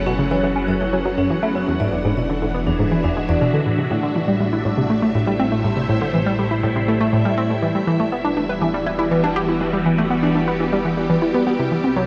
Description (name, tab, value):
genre	ambient, sequencer-driven space music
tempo	121 BPM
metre	4/4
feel	straight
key	unclear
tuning	A4 = 441 Hz
part	phased string machine	sustained chords	0.0-12.1 s	A2 to F#5	-24 LUFS	equal	ensemble chorus, phaser
part	vibraphone with medium hard mallets	arpeggios	0.0-3.5 s	B3 to D5	-29 LUFS	equal	analog delay
part	analog pluck	riff	0.0-12.0 s	E2 to B4	-22 LUFS	equal	chorus, analog delay
part	round analog bass	bass	0.0-12.1 s	E1 to C2	-36 LUFS	equal	none
part	bubbling stepped-filter texture	texture	0.0-12.1 s	G3 to B4	-33 LUFS	equal	chorus, built-in reverb
room	wet huge ambient reverb, RT60 7.8 s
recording	cassette tape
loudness	-19 LUFS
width	mono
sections	0.0-3.7 A section; 3.7-12.1 B section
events	fade-in on analog synth bass 3.7-12.1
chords	0.0 F#madd9; 1.7 E7; 3.7 Am; 7.6 Emadd9